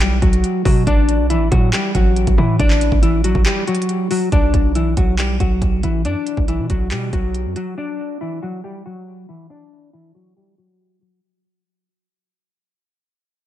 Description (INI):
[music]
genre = hip hop, trap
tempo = 139 BPM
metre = 4/4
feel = half-time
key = unclear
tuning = A4 = 439 Hz
[part]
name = semi-hollow electric guitar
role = melody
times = 0.0-11.2 s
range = E3 to D5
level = -20 LUFS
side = left 2 dB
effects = low-pass filter, ping-pong delay
[part]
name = hard-hitting 808-style bass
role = bass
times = 0.0-7.6 s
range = A1 to B2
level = -19 LUFS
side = right 1 dB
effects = none
[part]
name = trap drum kit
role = drums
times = 0.0-7.7 s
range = handclaps, hi-hat, kick drum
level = -18 LUFS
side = right 1 dB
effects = vintage 12-bit sampler grit
[sound]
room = light reverb, digital ambience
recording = none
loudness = -15 LUFS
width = side -12 dB against mid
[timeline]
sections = 0.0-4.3 A section; 4.3-11.2 B section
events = break 3.5-4.3; fade-out 4.3-11.2; filter sweep on clean electric guitar 4.3-11.2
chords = 0.0 A5; 7.8 E7sus2